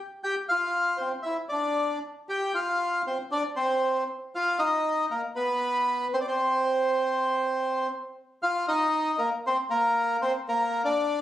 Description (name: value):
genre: tango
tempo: 117 BPM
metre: 4/4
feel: rubato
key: unclear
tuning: A4 = 440 Hz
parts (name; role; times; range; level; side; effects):
- bandoneon; solo; 0.2-11.2 s; Bb3 to G5; -24 LUFS; equal; none
room: moderate large studio reverb, RT60 1.2 s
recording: recorded on a phone in the room, club reverb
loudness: -24 LUFS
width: side -12 dB against mid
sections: 0.0-8.4 A section; 8.4-11.2 A section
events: none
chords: 0.2 F5; 1.3 Dsus2; 2.3 Csus4; 3.3 Csus2; 4.3 Bbsus4; 5.3 N.C.; 8.4 Bbsus4; 9.4 Bbsus2; 10.5 Bb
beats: | 0.23 0.75 1.26 1.77 | 2.28 2.79 3.31 3.82 | 4.33 4.84 5.35 5.86 | 6.37 6.88 7.39 7.90 | 8.41 8.93 9.44 9.95 | 10.45 10.96